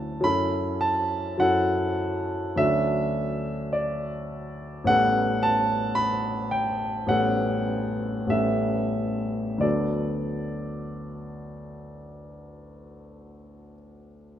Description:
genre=classical, impressionist solo piano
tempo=43-54 BPM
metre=4/4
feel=rubato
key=D major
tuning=A4 = 441 Hz
part: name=warm baby grand piano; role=solo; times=0.0-14.4 s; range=A1 to B5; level=-24 LUFS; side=equal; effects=none
room=moderate recital hall reverb, RT60 1.8 s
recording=close, detailed microphones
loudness=-23 LUFS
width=side -10 dB against mid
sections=0.0-14.4 A section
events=none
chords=0.2 F#m7; 2.6 Dmaj7; 4.9 A13; 9.6 D6

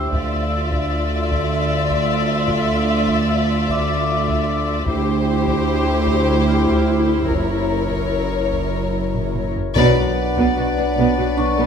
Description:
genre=cinematic, suspense film score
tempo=75 BPM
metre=3/4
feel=straight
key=D minor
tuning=A4 = 440 Hz
part: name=rich studio violin section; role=melody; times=0.0-11.7 s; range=C5 to D5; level=-25 LUFS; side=left 6 dB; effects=none
part: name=warm symphonic violin section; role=second line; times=0.0-11.7 s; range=F4 to B4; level=-27 LUFS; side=left 3 dB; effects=none
part: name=dark symphonic viola section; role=accompaniment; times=0.0-11.7 s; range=B3 to E5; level=-24 LUFS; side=right 1 dB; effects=none
part: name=glass harmonica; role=sustained chords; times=0.0-11.7 s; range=E4 to F#5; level=-27 LUFS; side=equal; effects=none
part: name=warm symphonic cello section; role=bass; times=0.0-11.7 s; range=D2 to B2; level=-24 LUFS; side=right 4 dB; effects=none
part: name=warm symphonic double bass section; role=bass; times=0.0-11.5 s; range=F#1 to D2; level=-25 LUFS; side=right 4 dB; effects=none
part: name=punchy sub bass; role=drone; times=0.0-11.7 s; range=F#1 to D2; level=-26 LUFS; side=left 1 dB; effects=none
part: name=vibraphone with medium mallets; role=texture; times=0.0-11.7 s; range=C#6 to F6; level=-30 LUFS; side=left 5 dB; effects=none
part: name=taiko ensemble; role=drums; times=0.1-11.1 s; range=none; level=-29 LUFS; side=equal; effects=none
part: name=mellow French horn section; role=sustained chords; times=9.8-11.7 s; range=F#3 to D4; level=-23 LUFS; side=left 5 dB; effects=none
part: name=timpani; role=percussion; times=9.8-10.9 s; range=B2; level=-26 LUFS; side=left 2 dB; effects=none
room=moderate scoring stage reverb, RT60 1.5 s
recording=none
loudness=-16 LUFS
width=side -7 dB against mid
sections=0.0-9.8 A section; 9.8-11.7 B section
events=drum fill 9.2-9.8; band accent 9.8-10.6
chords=0.1 Dmadd9; 4.9 C/D; 7.3 F#7; 9.8 Bm

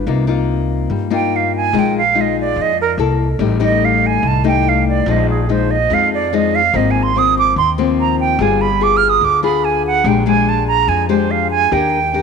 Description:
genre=bossa nova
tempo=144 BPM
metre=4/4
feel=straight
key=C minor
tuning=A4 = 441 Hz
part: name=nylon-string guitar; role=accompaniment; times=0.0-12.2 s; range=F2 to Bb4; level=-17 LUFS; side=left 9 dB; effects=none
part: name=upright bass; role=bass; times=0.0-12.2 s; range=G1 to G2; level=-20 LUFS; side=equal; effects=none
part: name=breathy silver concert flute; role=melody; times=1.1-12.2 s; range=Ab4 to F6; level=-16 LUFS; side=right 9 dB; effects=none
room=moderate plate reverb, RT60 2.4 s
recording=1960s-style stereo with parts hard left and right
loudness=-13 LUFS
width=side -6 dB against mid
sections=0.1-12.2 A section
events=flute solo 0.1-12.2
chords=0.1 Cm7; 1.7 Bb7sus4; 3.0 C6; 3.4 Am7b5; 5.1 Bb7sus4; 6.7 Ab69; 8.4 G7b9; 10.1 Bb6; 11.7 Ebmaj7

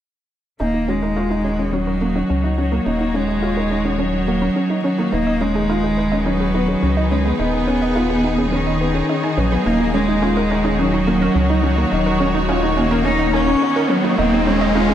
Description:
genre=piano and strings electronica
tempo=106 BPM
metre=4/4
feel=straight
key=Eb minor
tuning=A4 = 441 Hz
part: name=warm cello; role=melody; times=0.6-14.9 s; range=Eb3 to Eb4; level=-19 LUFS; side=right 1 dB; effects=none
part: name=rich symphonic string section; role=sustained chords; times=0.6-14.9 s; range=Eb3 to Db5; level=-26 LUFS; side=equal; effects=low-pass filter
part: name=wide unison pluck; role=arpeggios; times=0.6-14.9 s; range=Db4 to Cb6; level=-27 LUFS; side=right 4 dB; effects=digital delay
part: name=felt-muted upright piano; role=riff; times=0.6-14.9 s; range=Bb3 to F4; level=-22 LUFS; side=left 3 dB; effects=none
part: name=round analog bass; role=bass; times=0.6-14.9 s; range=Eb1 to Db2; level=-23 LUFS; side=equal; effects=tube saturation
part: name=riser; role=sound effects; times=12.0-14.9 s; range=none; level=-27 LUFS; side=equal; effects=none
room=wet concert hall reverb, RT60 2.3 s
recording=dark, warm production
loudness=-16 LUFS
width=side -10 dB against mid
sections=0.6-14.9 A section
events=build-up 0.6-14.9; filter sweep on synth arpeggio sound 0.6-14.9; riser 12.0-14.9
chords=0.6 Ebm7; 5.1 Abm/Eb; 9.7 Ebm7; 14.2 Ab5/Eb

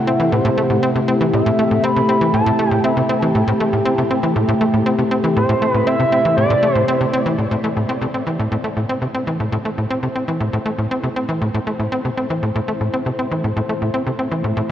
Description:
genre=ambient, sequencer-driven space music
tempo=119 BPM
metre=4/4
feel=straight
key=A minor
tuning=A4 = 440 Hz
part: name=pulse-width lead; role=melody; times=0.0-7.3 s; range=C5 to B5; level=-21 LUFS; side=equal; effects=chorus, ping-pong delay
part: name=evolving wavetable pad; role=sustained chords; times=0.0-14.7 s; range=C3 to C5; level=-21 LUFS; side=left 1 dB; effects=chorus, built-in reverb
part: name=tight sequencer bass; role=riff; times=0.1-14.6 s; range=A2 to C4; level=-19 LUFS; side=equal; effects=cassette tape, ping-pong delay
room=wet huge ambient reverb, RT60 8.4 s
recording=worn, warbling old tape, cassette tape, warbly pitch drift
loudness=-16 LUFS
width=side -10 dB against mid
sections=0.0-7.4 A section; 7.4-14.7 B section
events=fade-in on ambient pad 7.4-14.7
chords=0.0 Am

